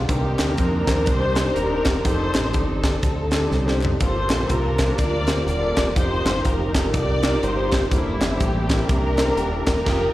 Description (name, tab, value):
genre	uptempo gospel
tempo	123 BPM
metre	4/4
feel	swing 60% on 8ths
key	unclear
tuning	A4 = 439 Hz
part	warm studio string section	melody	0.0-10.1 s	G3 to D5	-24 LUFS	equal	tape echo
part	mellow tonewheel organ	sustained chords	0.0-10.1 s	Bb3 to Eb6	-34 LUFS	right 3 dB	none
part	deep dub fingered electric bass	bass	0.0-10.1 s	Eb1 to F2	-24 LUFS	equal	none
part	clear grand piano	accompaniment	0.1-10.1 s	G2 to D5	-28 LUFS	left 2 dB	slapback echo
part	tight funk drum kit	drums	0.1-10.1 s	crash cymbal, hi-hat, kick drum, snare drum, toms	-23 LUFS	equal	none
part	group handclap	percussion	0.4-9.8 s	none	-37 LUFS	equal	none
room	light reverb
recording	live gig heard through the venue's PA, recital hall reverb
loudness	-18 LUFS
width	side -16 dB against mid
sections	0.0-10.1 A section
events	drum fill 3.5-4.0; band accent 9.9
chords	0.1 Cm9; 2.0 F13; 4.0 Gm9; 6.0 F9sus4; 7.9 C13/E